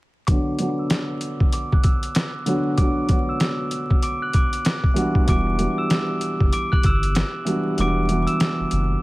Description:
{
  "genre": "hip hop, boom-bap hip-hop",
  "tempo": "96 BPM",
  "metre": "4/4",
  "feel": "swing 61% on 16ths",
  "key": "B minor",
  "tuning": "A4 = 440 Hz",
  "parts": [
    { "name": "glockenspiel with soft plastic mallets", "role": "melody", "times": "0.3-9.0 s", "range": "D6 to F#7", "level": "-27 LUFS", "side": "equal", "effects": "low-pass filter, tape echo" },
    { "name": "dark grand piano", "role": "accompaniment", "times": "0.3-9.0 s", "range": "D3 to F#4", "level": "-24 LUFS", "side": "equal", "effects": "cassette tape, low-pass filter" },
    { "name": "boom bap sampler-style drum kit", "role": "drums", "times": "0.3-8.9 s", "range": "hi-hat, kick drum, snare drum", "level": "-20 LUFS", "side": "equal", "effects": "none" },
    { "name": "soft dub sub bass", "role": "bass", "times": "5.3-9.0 s", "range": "E1 to G1", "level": "-23 LUFS", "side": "equal", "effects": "none" }
  ],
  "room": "small room reverb",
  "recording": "vinyl crackle",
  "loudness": "-19 LUFS",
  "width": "side -20 dB against mid",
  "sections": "0.3-9.0 A section",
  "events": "filter sweep 0.3-9.0; kick muted 7.8-9.0",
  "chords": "0.3 Bm; 5.0 Em7",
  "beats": "| 0.28 0.91 1.53 2.16 | 2.78 3.41 4.03 4.66 | 5.28 5.91 6.53 7.16 | 7.78 8.41"
}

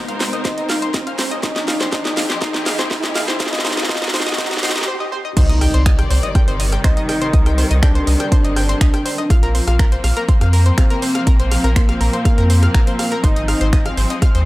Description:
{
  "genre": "melodic techno",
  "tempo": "122 BPM",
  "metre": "4/4",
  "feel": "straight",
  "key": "C minor",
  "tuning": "A4 = 440 Hz",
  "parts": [
    { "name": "fat analog lead", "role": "melody", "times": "0.0-13.9 s", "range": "Bb3 to F4", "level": "-23 LUFS", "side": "equal", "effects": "chorus" },
    { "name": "warm studio string section", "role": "sustained chords", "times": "0.0-14.5 s", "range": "C3 to D5", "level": "-26 LUFS", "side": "left 2 dB", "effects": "sidechain pumping" },
    { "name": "analog drone", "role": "drone", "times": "0.1-4.9 s", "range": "C3 to C4", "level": "-42 LUFS", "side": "left 2 dB", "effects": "none" },
    { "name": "riser and impact", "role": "sound effects", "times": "0.0-7.3 s", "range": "none", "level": "-26 LUFS", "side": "right 1 dB", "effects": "none" },
    { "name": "analog pluck", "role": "arpeggios", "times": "0.1-14.4 s", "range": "Bb4 to G5", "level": "-25 LUFS", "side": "equal", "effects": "chorus, cassette tape, sidechain pumping, analog delay" },
    { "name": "house drum kit", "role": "drums", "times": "0.1-14.4 s", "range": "crash cymbal, finger snaps, hi-hat, rim click, snare drum", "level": "-23 LUFS", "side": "equal", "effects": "small room ambience" },
    { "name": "electronic kick drum", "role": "drums", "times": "0.4-14.3 s", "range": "none", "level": "-14 LUFS", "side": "equal", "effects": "small room ambience" },
    { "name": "round analog bass", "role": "bass", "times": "5.4-14.5 s", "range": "G1 to F2", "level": "-16 LUFS", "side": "equal", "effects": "sidechain pumping" }
  ],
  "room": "digital ambience",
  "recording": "dry, gritty hardware recording, high-pass filter",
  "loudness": "-14 LUFS",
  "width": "side -18 dB against mid",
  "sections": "0.0-5.4 A section; 5.4-14.5 B section",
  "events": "build-up 0.0-5.4; drum fill 0.0-4.9; riser 0.0-4.9; filter sweep on analog synth lead 0.0-5.4; break 4.9-5.4; drop 5.4-14.5; impact 5.4-7.3",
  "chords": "0.0 Ab6; 1.4 Fm7; 5.4 Cm; 9.3 Bbsus2; 13.2 Ab6",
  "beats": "0.45 0.94 | 1.43 1.93 2.42 2.91 | 3.40 3.89 4.38 4.88 | 5.37 5.86 6.35 6.84 | 7.33 7.83 8.32 8.81 | 9.30 9.79 10.29 10.78 | 11.27 11.76 12.25 12.74 | 13.24 13.73 14.22"
}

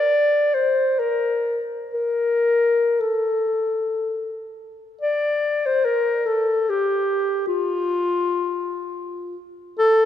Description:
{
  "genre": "classical, free, expressive piece for unaccompanied clarinet",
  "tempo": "free time",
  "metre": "none",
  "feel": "none",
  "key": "D minor",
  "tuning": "A4 = 441 Hz",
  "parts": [
    { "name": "mellow clarinet", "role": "solo", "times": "0.0-10.1 s", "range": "F4 to D5", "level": "-19 LUFS", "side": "left 2 dB", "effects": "none" }
  ],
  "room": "wet church reverb, RT60 3.0 s",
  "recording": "minimal, uncompressed stereo recording",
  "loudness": "-19 LUFS",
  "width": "side -10 dB against mid",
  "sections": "0.0-5.0 A section; 5.0-10.1 B section",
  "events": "none",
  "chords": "none",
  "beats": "free time"
}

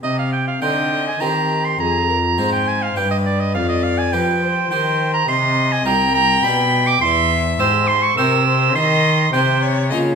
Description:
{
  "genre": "classical, baroque-style sonata movement with continuo",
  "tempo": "103 BPM",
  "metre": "3/4",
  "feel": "straight",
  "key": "C minor",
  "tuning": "A4 = 441 Hz",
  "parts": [
    { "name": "bright oboe", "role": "second line", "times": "0.0-9.6 s", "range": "D5 to E6", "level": "-18 LUFS", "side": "right 5 dB", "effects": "none" },
    { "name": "harpsichord", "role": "accompaniment", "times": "0.0-10.2 s", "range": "C2 to Eb5", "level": "-23 LUFS", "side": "left 1 dB", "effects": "none" },
    { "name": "rich cello", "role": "bass", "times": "0.0-10.2 s", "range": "C2 to F3", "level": "-21 LUFS", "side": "equal", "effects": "none" },
    { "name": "warm violin", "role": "melody", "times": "0.6-10.0 s", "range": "G4 to G5", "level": "-22 LUFS", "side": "left 8 dB", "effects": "none" }
  ],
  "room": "wet recital hall reverb, RT60 1.4 s",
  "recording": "minimal, uncompressed stereo recording",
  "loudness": "-15 LUFS",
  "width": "side -6 dB against mid",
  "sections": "0.0-10.2 A section",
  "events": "none",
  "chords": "0.0 Cm; 1.2 Cm/Eb; 1.8 Fm; 3.0 G; 3.6 G7/F; 4.7 Cm/Eb; 5.3 Cm; 6.4 G/B; 7.0 C/E; 8.8 Cm/Eb",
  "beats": "| 0.03 0.62 1.21 | 1.80 2.38 2.96 | 3.55 4.13 4.71 | 5.28 5.86 6.43 | 7.01 7.59 8.18 | 8.76 9.34 9.91"
}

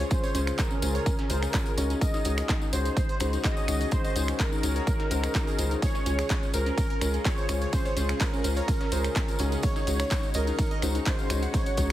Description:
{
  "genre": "progressive house",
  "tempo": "126 BPM",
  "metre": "4/4",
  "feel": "straight",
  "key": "Db major",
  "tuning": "A4 = 440 Hz",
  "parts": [
    { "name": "soft supersaw", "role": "melody", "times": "0.0-11.9 s", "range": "Bb4 to Eb5", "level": "-34 LUFS", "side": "right 1 dB", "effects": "tape echo" },
    { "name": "evolving wavetable pad", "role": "sustained chords", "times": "0.0-11.9 s", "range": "Db3 to Ab4", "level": "-39 LUFS", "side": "right 1 dB", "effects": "phaser, built-in reverb, sidechain pumping" },
    { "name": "glassy wavetable pluck", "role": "arpeggios", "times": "0.0-11.9 s", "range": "Db4 to Gb5", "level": "-35 LUFS", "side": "right 1 dB", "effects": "chorus, sidechain pumping, ping-pong delay" },
    { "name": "warm grand piano", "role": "stabs", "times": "0.0-11.9 s", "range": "Db3 to Eb5", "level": "-34 LUFS", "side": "left 4 dB", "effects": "sidechain pumping" },
    { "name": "round analog bass", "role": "bass", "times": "0.0-11.9 s", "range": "Db2", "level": "-28 LUFS", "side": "equal", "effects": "sidechain pumping" },
    { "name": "big-room dance drum kit", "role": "drums", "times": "0.0-11.9 s", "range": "finger snaps, handclaps, hi-hat, ride cymbal", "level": "-35 LUFS", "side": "equal", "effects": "overdrive" },
    { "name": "dusty soul sampler-style drum kit", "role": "drums", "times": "0.0-11.9 s", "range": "hi-hat, snare drum", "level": "-44 LUFS", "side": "equal", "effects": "none" },
    { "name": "tambourine", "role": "percussion", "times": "0.0-11.9 s", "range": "none", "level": "-40 LUFS", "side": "left 3 dB", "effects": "none" },
    { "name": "electronic kick drum", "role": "drums", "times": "0.1-11.9 s", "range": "none", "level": "-27 LUFS", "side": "equal", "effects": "overdrive" },
    { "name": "twinkling granular texture", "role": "texture", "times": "7.0-11.9 s", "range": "Db4 to Db7", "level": "-44 LUFS", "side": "right 2 dB", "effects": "none" }
  ],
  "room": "light reverb",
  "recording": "heavily compressed radio sound, multiband compression",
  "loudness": "-24 LUFS",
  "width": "side -13 dB against mid",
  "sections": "0.0-11.9 A section",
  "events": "none",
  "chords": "0.0 Dbmaj7; 9.6 Ab7sus4/Db",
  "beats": "| 0.11 0.58 1.06 1.54 | 2.01 2.49 2.97 3.44 | 3.92 4.39 4.87 5.35 | 5.82 6.30 6.78 7.25 | 7.73 8.21 8.68 9.16 | 9.63 10.11 10.59 11.06 | 11.54"
}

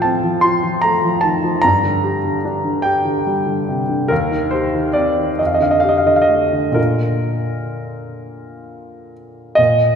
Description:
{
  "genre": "classical, romantic nocturne for solo piano",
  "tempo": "41-50 BPM (dotted quarters)",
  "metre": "6/8",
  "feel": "rubato",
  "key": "Bb major",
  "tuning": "A4 = 440 Hz",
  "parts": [
    { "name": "warm grand piano", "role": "solo", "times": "0.0-10.0 s", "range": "Eb2 to C6", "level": "-15 LUFS", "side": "equal", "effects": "none" }
  ],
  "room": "wet church reverb, RT60 2.9 s",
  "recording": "recorded in a church or concert hall",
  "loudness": "-14 LUFS",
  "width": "side -7 dB against mid",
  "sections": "0.0-9.6 A section",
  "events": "none",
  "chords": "0.0 F/A; 1.6 Gm; 4.1 Cm/Eb; 5.4 F69; 6.8 Bb",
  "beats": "0.44 | 1.64 2.85 | 4.11 5.40 | 6.77 8.20 | 9.58"
}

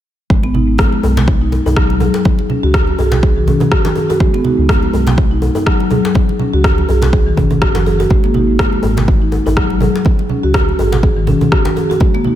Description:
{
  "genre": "afro house",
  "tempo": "123 BPM",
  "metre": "4/4",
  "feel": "swing 56% on 16ths",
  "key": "G# minor",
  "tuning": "A4 = 445 Hz",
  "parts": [
    { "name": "marimba with soft mallets", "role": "arpeggios", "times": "0.3-12.4 s", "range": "D#3 to G#4", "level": "-16 LUFS", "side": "left 1 dB", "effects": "sidechain pumping, dub echo" },
    { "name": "dark detuned saw bass", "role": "bass", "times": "0.3-11.3 s", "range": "F#1 to C#2", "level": "-16 LUFS", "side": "equal", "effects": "sidechain pumping" },
    { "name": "electronic kick drum", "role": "drums", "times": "0.3-12.1 s", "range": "none", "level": "-14 LUFS", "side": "equal", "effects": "overdrive" },
    { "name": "congas", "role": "percussion", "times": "0.3-12.4 s", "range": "none", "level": "-21 LUFS", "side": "right 4 dB", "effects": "dub echo" },
    { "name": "electronic rim click", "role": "drums", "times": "0.8-11.6 s", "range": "none", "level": "-21 LUFS", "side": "left 1 dB", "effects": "overdrive" },
    { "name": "djembe", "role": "percussion", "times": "0.8-12.0 s", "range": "none", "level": "-24 LUFS", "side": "left 2 dB", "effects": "none" }
  ],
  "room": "light reverb, small room ambience",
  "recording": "echo-heavy mix",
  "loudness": "-11 LUFS",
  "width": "side -12 dB against mid",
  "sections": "0.3-12.4 A section",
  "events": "none",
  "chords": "0.3 G#m7; 8.1 D#7(no3)/G#",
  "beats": "| 0.30 0.79 1.28 1.76 | 2.25 2.74 3.23 3.72 | 4.20 4.69 5.18 5.67 | 6.16 6.64 7.13 7.62 | 8.11 8.60 9.08 9.57 | 10.06 10.55 11.03 11.52 | 12.01"
}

